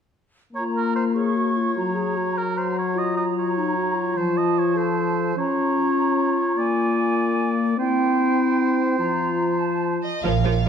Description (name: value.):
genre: cinematic, heroic adventure film score.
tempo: 99 BPM (dotted quarters).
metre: 6/8.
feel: straight.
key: Bb minor.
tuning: A4 = 435 Hz.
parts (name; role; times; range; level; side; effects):
bright small flute group; second line; 0.5-10.0 s; G5 to Db6; -29 LUFS; right 2 dB; none.
clear oboe; second line; 0.5-10.0 s; Bb4 to Eb5; -26 LUFS; right 3 dB; none.
mellow French horn section; sustained chords; 0.5-10.0 s; F3 to Db4; -24 LUFS; left 4 dB; none.
warm clarinet; second line; 0.6-10.0 s; Eb4 to A4; -26 LUFS; equal; none.
warm symphonic violin section; melody; 10.0-10.7 s; Eb5 to F5; -27 LUFS; left 1 dB; none.
rich symphonic violin section; second line; 10.2-10.7 s; Bb4 to Db5; -28 LUFS; left 2 dB; none.
rich symphonic viola section; accompaniment; 10.2-10.7 s; F3 to F4; -26 LUFS; right 4 dB; none.
rich symphonic double bass section; bass; 10.2-10.7 s; Bb1; -20 LUFS; right 6 dB; none.
room: wet scoring stage reverb, RT60 1.7 s.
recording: dark, warm production.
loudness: -20 LUFS.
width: side -7 dB against mid.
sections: 0.5-10.2 A section.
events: build-up 0.5-10.2.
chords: 0.5 Bbm; 1.8 Gb; 4.2 F; 5.4 Db6; 6.6 Bb7; 7.8 C; 9.0 Fsus4.